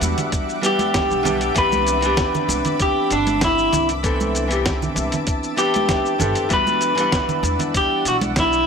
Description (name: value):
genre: sunset chillout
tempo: 97 BPM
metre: 4/4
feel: straight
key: unclear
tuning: A4 = 440 Hz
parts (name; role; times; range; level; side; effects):
- nylon-string guitar; accompaniment; 0.0-8.7 s; E3 to F#5; -24 LUFS; equal; auto-pan, tape echo
- shimmering ambient pad; sustained chords; 0.0-8.7 s; G3 to E6; -28 LUFS; left 1 dB; chorus, built-in reverb
- upright bass; bass; 0.0-8.6 s; G1 to E2; -26 LUFS; equal; none
- dusty soul sampler-style drum kit; drums; 0.0-8.6 s; hi-hat, shaker, snare drum; -25 LUFS; equal; none
- congas; percussion; 0.0-8.3 s; none; -28 LUFS; right 4 dB; none
- electronic kick drum; drums; 0.3-8.5 s; none; -25 LUFS; equal; none
- electric guitar at the edge of break-up; melody; 0.7-8.7 s; D4 to B4; -20 LUFS; left 1 dB; analog delay
room: light reverb, studio reverb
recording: dry, gritty hardware recording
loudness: -17 LUFS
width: side -6 dB against mid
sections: 0.0-8.7 A section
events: none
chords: 0.0 Em9; 1.6 Cmaj9; 6.5 Em9